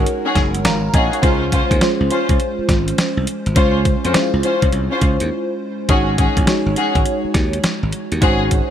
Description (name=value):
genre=R&B, new jack swing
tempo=103 BPM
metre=4/4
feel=swing 65% on 16ths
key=Db major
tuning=A4 = 440 Hz
part: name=FM electric piano with soft pad layer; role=accompaniment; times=0.0-8.7 s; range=Ab3 to Bb5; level=-20 LUFS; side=equal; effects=chorus
part: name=slap bass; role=bass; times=0.0-8.6 s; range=Gb1 to F2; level=-20 LUFS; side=equal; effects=none
part: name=crisp 8-bit digital drum machine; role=drums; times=0.1-8.7 s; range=hi-hat, kick drum, snare drum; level=-18 LUFS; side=equal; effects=overdrive
part: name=dark studio string section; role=stabs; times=0.3-8.4 s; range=Db4 to C5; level=-21 LUFS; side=left 2 dB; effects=ping-pong delay
room=moderate plate reverb, RT60 2.0 s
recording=bright 1980s-style digital production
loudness=-14 LUFS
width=side -10 dB against mid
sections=0.0-8.7 A section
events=break 5.3-5.9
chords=0.0 Ab7sus4; 1.2 Dbmaj7; 5.9 Ab7sus4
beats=0.07 0.65 | 1.23 1.81 2.40 2.98 | 3.56 4.14 4.73 5.31 | 5.89 6.47 7.06 7.64 | 8.22